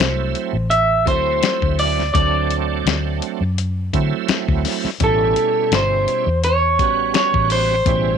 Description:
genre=straight-eighth soul blues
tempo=84 BPM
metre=4/4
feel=swing 54% on 16ths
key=unclear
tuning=A4 = 441 Hz
part: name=electric guitar through a small old amp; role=melody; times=0.0-8.2 s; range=A4 to E5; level=-18 LUFS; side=right 1 dB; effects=none
part: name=bright tonewheel organ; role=accompaniment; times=0.0-8.2 s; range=B2 to F#4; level=-24 LUFS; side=right 15 dB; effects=overdrive, chorus vibrato, slow rotary speaker
part: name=vintage muted fingered electric bass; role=bass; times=0.0-8.2 s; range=G1 to D3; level=-21 LUFS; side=left 1 dB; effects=transformer saturation
part: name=lo-fi sampler-style drum kit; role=drums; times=0.0-8.0 s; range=hi-hat, kick drum, snare drum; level=-21 LUFS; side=left 5 dB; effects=none
room=little or no reverb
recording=1960s-style stereo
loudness=-16 LUFS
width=side -7 dB against mid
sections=0.0-8.2 A section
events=none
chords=0.0 D9; 5.0 A9

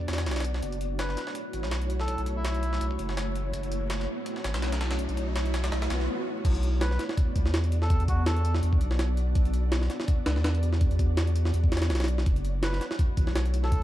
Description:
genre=drum and bass, jungle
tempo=165 BPM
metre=4/4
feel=swing 55% on 16ths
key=B minor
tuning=A4 = 440 Hz
part: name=ethereal airy pad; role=sustained chords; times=0.0-13.8 s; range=A3 to D5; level=-35 LUFS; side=equal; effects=ensemble chorus, built-in reverb, tremolo
part: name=saturated sub bass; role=bass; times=0.0-13.8 s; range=F#1 to E2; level=-27 LUFS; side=equal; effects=none
part: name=jungle sampler-style drum kit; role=drums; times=0.0-13.8 s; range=crash cymbal, hi-hat, kick drum, snare drum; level=-29 LUFS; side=equal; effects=high-pass filter on hats, high-pass filter on snare, high-pass filter on kick, high-pass filter on cymbals
part: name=riser and swell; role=sound effects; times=3.2-6.4 s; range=none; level=-38 LUFS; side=equal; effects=none
part: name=melodica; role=melody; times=1.0-2.9, 6.8-8.5, 12.6-13.8 s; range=E4 to B4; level=-37 LUFS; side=equal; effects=vintage 12-bit sampler grit, dub echo
room=light reverb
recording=dark, warm production, vinyl crackle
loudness=-25 LUFS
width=side -14 dB against mid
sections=0.0-6.4 A section; 6.4-13.8 B section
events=build-up 0.0-6.4; filter sweep on ambient pad 0.0-6.4; riser 3.2-6.1; swell 5.7-6.4; break 6.1-6.4; drop 6.4-13.8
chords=0.0 Bm; 0.6 F#m7; 6.4 Bm; 12.3 F#m7

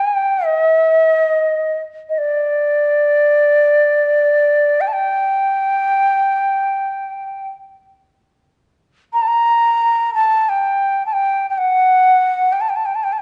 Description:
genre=Arabic maqam ensemble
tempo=free time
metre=none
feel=none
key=unclear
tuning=A4 = 440 Hz
part: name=breathy ney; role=solo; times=0.0-13.2 s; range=D5 to Bb5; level=-16 LUFS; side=equal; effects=none
room=moderate recital hall reverb, RT60 1.3 s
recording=dark, warm production, nothing above 10.3 kHz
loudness=-16 LUFS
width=mono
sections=0.0-13.2 A section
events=none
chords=none

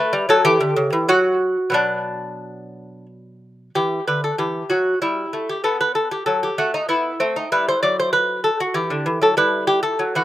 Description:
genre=classical, baroque-style dance for lute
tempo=96 BPM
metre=3/4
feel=rubato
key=B minor, E minor from 3.8 s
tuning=A4 = 440 Hz
part: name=lute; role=solo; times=0.0-10.2 s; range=B2 to D5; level=-17 LUFS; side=equal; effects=none
room=little or no reverb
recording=recorded outdoors, with no room sound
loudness=-17 LUFS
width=side -13 dB against mid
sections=0.0-3.8 A section; 3.8-10.2 A section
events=none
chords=0.4 C#dim; 1.1 N.C.; 1.7 Bm; 3.8 Em; 5.6 B5; 7.5 Em

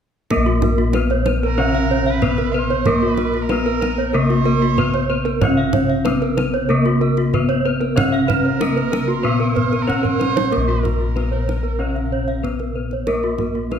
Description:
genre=Balinese gamelan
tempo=94 BPM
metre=4/4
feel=straight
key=Bb pelog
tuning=A4 = 440 Hz
part: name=gamelan-type bronze metallophone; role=melody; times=0.3-13.8 s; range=Bb3 to C4+50c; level=-22 LUFS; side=left 2 dB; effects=none
part: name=gamelan-type bronze metallophone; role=accompaniment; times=0.3-13.8 s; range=C3+50c to Cb4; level=-27 LUFS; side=right 4 dB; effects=none
part: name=gamelan-type bronze metallophone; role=arpeggios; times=0.3-13.8 s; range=Gb4-40c to F5-45c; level=-25 LUFS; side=left 5 dB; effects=none
part: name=gamelan-type bossed gongs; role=bass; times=0.3-13.8 s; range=Bb1 to Bb4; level=-21 LUFS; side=left 1 dB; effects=none
part: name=kendang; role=percussion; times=0.3-13.8 s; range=none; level=-25 LUFS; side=right 3 dB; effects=none
part: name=gamelan-type bronze metallophone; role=arpeggios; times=0.6-13.6 s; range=Gb4-40c to C5+50c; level=-25 LUFS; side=right 6 dB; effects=none
part: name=warm erhu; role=second line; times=1.5-12.5 s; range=Bb4 to F5-42c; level=-27 LUFS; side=right 7 dB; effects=none
room=moderate recital hall reverb, RT60 1.5 s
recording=none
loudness=-16 LUFS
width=side -8 dB against mid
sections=0.3-13.8 A section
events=drum fill 10.0-10.5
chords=none

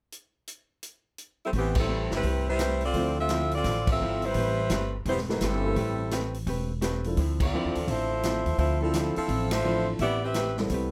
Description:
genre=jazz, big band swing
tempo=170 BPM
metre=4/4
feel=swing 64% on 8ths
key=A minor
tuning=A4 = 439 Hz
part: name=swinging big-band drum kit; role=drums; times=0.1-10.8 s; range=crash cymbal, hi-hat, kick drum, ride cymbal, snare drum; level=-35 LUFS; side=equal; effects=none
part: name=warm saxophone section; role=melody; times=1.4-10.6 s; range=E3 to E5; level=-31 LUFS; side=equal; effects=none
part: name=archtop guitar, miked and amplified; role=accompaniment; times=1.5-10.9 s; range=D3 to B4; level=-37 LUFS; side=equal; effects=none
part: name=upright bass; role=bass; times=1.5-10.9 s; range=E1 to E2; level=-32 LUFS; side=equal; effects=none
part: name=warm grand piano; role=accompaniment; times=2.9-10.9 s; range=F3 to E5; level=-34 LUFS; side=equal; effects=none
room=light reverb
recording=none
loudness=-27 LUFS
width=mono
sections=0.1-1.5 A section; 1.5-10.9 B section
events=band accent 1.7, 3.8, 7.4, 9.5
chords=0.1 N.C.; 1.5 Am9; 2.9 Dm9; 4.4 Am9; 7.2 Dm9; 10.0 Am9

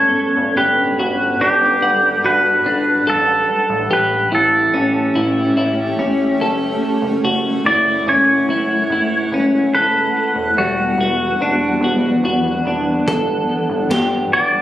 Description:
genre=dream pop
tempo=72 BPM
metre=4/4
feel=straight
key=G lydian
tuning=A4 = 439 Hz
part: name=pedal steel guitar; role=melody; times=0.0-14.6 s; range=F#4 to D5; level=-16 LUFS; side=equal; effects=tape echo
part: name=shimmering ambient pad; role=sustained chords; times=0.0-14.6 s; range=E3 to F#5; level=-21 LUFS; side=equal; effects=chorus, built-in reverb
part: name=clean electric guitar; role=arpeggios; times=0.0-14.6 s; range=G3 to F#5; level=-19 LUFS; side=left 1 dB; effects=lush chorus, tape echo
part: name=chorused synth bass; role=bass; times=0.0-14.6 s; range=E1 to A1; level=-25 LUFS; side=equal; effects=none
part: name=raw garage drum kit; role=drums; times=13.1-14.1 s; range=hi-hat, kick drum, snare drum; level=-24 LUFS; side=equal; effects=none
room=light reverb, studio ambience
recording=recorded on a phone in the room, club reverb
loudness=-14 LUFS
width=side -13 dB against mid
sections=0.0-14.6 A section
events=none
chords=0.0 Gmaj7; 3.1 A7; 6.4 F#m7; 9.7 Em9; 13.1 Gmaj7

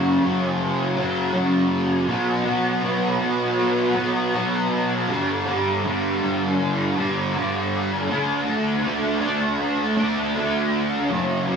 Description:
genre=rock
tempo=80 BPM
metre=4/4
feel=straight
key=unclear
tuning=A4 = 436 Hz
part: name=fuzz guitar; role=solo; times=0.0-11.6 s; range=F#2 to D4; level=-20 LUFS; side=equal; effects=distortion, ensemble chorus
room=light reverb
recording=small room ambience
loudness=-20 LUFS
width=side -6 dB against mid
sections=0.0-11.6 A section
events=none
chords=0.0 F#5; 2.1 B5; 5.1 G5; 8.1 D5

